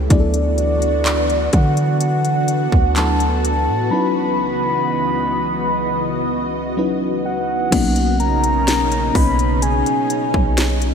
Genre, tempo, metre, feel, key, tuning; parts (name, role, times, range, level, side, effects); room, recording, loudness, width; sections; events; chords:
contemporary R&B; 63 BPM; 4/4; straight; B major; A4 = 439 Hz
FM electric piano with auto-pan; accompaniment; 0.0-10.9 s; F#3 to B4; -24 LUFS; left 2 dB
lush unison pad; sustained chords; 0.0-10.9 s; C#2 to D#5; -22 LUFS; equal; chorus, phaser
warm 808-style bass; bass; 0.0-10.9 s; B1 to D3; -19 LUFS; equal
soft octave-layered synth lead; melody; 0.1-10.6 s; D5 to B5; -21 LUFS; equal; chorus, analog delay
trap drum kit; drums; 0.1-10.9 s; crash cymbal, handclaps, hi-hat, kick drum, snare drum; -19 LUFS; equal
wet lush hall reverb, RT60 2.9 s; dreamy mix soaked in reverb; -15 LUFS; side -7 dB against mid
0.0-7.7 A section; 7.7-10.9 B section
break 3.9-7.7
0.1 D69; 3.9 C#m11; 7.7 Bmaj9